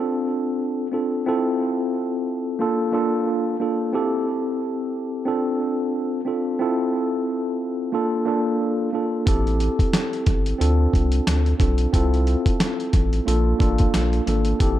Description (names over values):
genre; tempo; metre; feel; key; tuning
hip hop, boom-bap hip-hop; 90 BPM; 4/4; swing 57% on 16ths; unclear; A4 = 439 Hz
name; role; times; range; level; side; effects
mellow tine electric piano; accompaniment; 0.0-14.8 s; Bb3 to A4; -22 LUFS; equal; medium stereo tremolo, cassette tape, high-pass filter, low-pass filter, analog delay
saturated sub bass; bass; 9.3-14.8 s; G1 to D2; -20 LUFS; equal; none
dusty soul sampler-style drum kit; drums; 9.3-14.8 s; hi-hat, kick drum, snare drum; -21 LUFS; equal; overdrive, analog delay
room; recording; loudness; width
moderate spring reverb, RT60 1.9 s; echo-heavy mix; -20 LUFS; side -12 dB against mid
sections
0.0-14.8 A section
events
none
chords
0.0 Dm7; 1.3 Fmaj7/C; 2.6 Bbmaj7; 3.9 Am7; 5.3 Dm7; 6.6 Fmaj7/C; 7.9 Bbmaj7; 9.3 Am7; 10.6 Dm7; 11.9 Fmaj7/C; 13.3 Bbmaj7